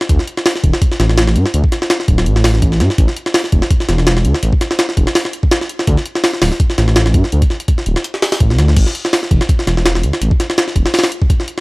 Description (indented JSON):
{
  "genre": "drum and bass, jungle",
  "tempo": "166 BPM",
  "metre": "4/4",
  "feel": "swing 54% on 16ths",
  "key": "unclear",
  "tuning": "A4 = 441 Hz",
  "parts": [
    { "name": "jungle sampler-style drum kit", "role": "drums", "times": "0.0-11.6 s", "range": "crash cymbal, hi-hat, kick drum, snare drum", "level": "-13 LUFS", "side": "equal", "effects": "none" },
    { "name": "dark detuned saw bass", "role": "bass", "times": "0.1-10.8 s", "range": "D1 to G2", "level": "-13 LUFS", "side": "equal", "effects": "none" }
  ],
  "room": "little or no reverb",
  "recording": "dry, gritty hardware recording, vinyl crackle",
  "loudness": "-12 LUFS",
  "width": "side -25 dB against mid",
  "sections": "0.0-8.8 A section; 8.8-11.6 A section",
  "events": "drop 0.0-8.8, 8.8-11.6",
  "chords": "none"
}